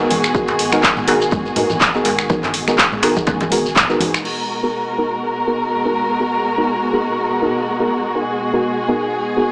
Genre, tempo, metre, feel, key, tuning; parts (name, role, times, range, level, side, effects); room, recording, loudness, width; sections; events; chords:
afro house; 123 BPM; 4/4; swing 56% on 16ths; G# minor; A4 = 441 Hz
dark studio string section; sustained chords; 0.0-9.5 s; B2 to A#4; -19 LUFS; equal; sidechain pumping
deep mellow chord stab; stabs; 0.0-9.4 s; B3 to A#4; -20 LUFS; equal; chorus, sidechain pumping, tape echo
warm sub bass; bass; 0.0-4.0 s; G#1; -33 LUFS; equal; sidechain pumping
congas; percussion; 0.0-4.1 s; -26 LUFS; equal
afro-pop drum kit; drums; 0.1-4.4 s; crash cymbal, finger snaps, handclaps, hi-hat, toms; -17 LUFS; equal
djembe; percussion; 0.1-4.1 s; -24 LUFS; equal
shekere; percussion; 0.2-4.2 s; -30 LUFS; equal
electronic kick drum; drums; 0.3-3.9 s; -23 LUFS; equal; overdrive
moderate recital hall reverb, RT60 1.4 s; dry, gritty hardware recording, transformer saturation, small speaker sound; -15 LUFS; side -33 dB against mid
0.0-4.2 A section; 4.2-9.5 B section
filter sweep on synth stab 4.2-9.5
0.0 G#m9